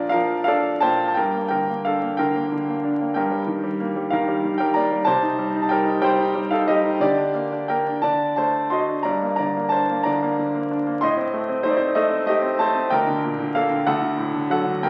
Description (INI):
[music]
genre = classical, lyrical solo piano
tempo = 58-64 BPM (dotted quarters)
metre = 6/8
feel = rubato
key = G minor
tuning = A4 = 440 Hz
[part]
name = bright concert grand piano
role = solo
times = 0.0-14.9 s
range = D2 to C6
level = -22 LUFS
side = equal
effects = none
[sound]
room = wet scoring stage reverb, RT60 1.9 s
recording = very old 78 rpm record, vinyl crackle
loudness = -22 LUFS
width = mono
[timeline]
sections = 0.0-1.2 A section; 1.2-14.9 B section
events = grand piano fill 0.1-1.2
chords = 0.0 Bb; 1.2 Gm; 3.2 Eb/G; 5.1 Cm; 7.0 Gm/D; 8.0 D; 9.0 Gm; 11.0 Adim; 12.9 Gm/D; 13.9 D